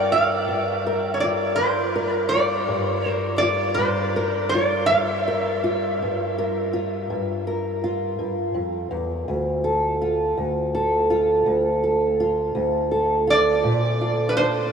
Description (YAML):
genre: acoustic country blues, solo or duo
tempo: 55 BPM (dotted quarters)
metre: 12/8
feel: straight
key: unclear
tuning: A4 = 440 Hz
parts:
  - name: metal-body resonator slide guitar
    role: melody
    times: 0.0-5.9, 13.3-14.7 s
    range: B4 to F5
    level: -22 LUFS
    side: right 1 dB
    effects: analog delay
  - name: fingerpicked old ladder-braced acoustic guitar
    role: accompaniment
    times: 0.0-14.7 s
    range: D2 to Bb4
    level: -22 LUFS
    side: equal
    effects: analog chorus
room: wet huge ambient reverb, RT60 7.3 s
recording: dreamy mix soaked in reverb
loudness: -20 LUFS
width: side -6 dB against mid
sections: 0.0-14.7 A section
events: none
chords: 0.0 Gm7; 9.3 Dm; 13.6 Bb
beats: | 0.48 1.58 2.69 3.79 | 4.88 5.98 7.08 8.18 | 9.27 10.37 11.46 12.55 | 13.64